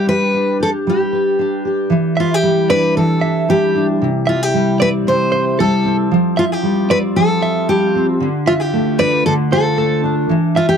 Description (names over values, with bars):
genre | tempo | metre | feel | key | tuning
acoustic pop | 114 BPM | 4/4 | straight | unclear | A4 = 441 Hz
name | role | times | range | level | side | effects
picked steel-string acoustic guitar | melody | 0.0-10.8 s | F4 to C5 | -17 LUFS | left 1 dB | none
fingerpicked steel-string acoustic guitar | accompaniment | 0.0-10.8 s | C3 to B4 | -16 LUFS | equal | double-tracked left and right
direct-recorded clean electric guitar | arpeggios | 2.2-10.7 s | A4 to E5 | -23 LUFS | right 4 dB | spring reverb
room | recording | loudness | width
moderate booth ambience, RT60 0.2 s | dry, close 1970s-style studio recording | -13 LUFS | side -7 dB against mid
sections
0.0-1.9 A section; 1.9-10.8 B section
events
none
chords
0.0 G; 1.9 Em7; 4.0 C6; 6.1 Fadd9; 8.2 Dm